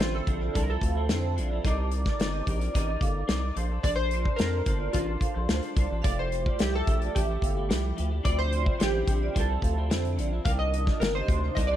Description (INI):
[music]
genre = indie pop, bedroom pop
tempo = 109 BPM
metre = 4/4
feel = straight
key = unclear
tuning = A4 = 440 Hz
[part]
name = chorused retro synth keys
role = melody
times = 0.0-11.8 s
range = F4 to F5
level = -32 LUFS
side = right 1 dB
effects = ensemble chorus, tape echo
[part]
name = vibraphone with medium hard mallets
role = second line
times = 0.0-11.8 s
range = Eb4 to G5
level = -36 LUFS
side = right 5 dB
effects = analog chorus, tape echo
[part]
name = clean electric guitar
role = accompaniment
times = 0.0-11.8 s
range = C3 to D5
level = -36 LUFS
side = left 2 dB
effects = ensemble chorus, vibrato effect
[part]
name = round analog bass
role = bass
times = 0.0-11.8 s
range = F1 to F2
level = -29 LUFS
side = equal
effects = none
[part]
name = loose indie drum kit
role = drums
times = 0.0-11.7 s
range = hi-hat, kick drum, snare drum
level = -28 LUFS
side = equal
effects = tape echo
[sound]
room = small room ambience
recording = echo-heavy mix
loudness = -24 LUFS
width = side -12 dB against mid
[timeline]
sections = 0.0-11.8 A section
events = none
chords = 0.0 Dm9; 1.6 Cm9; 3.6 Bbmaj9; 6.0 Fmaj9; 8.2 Dm9; 10.5 Cm9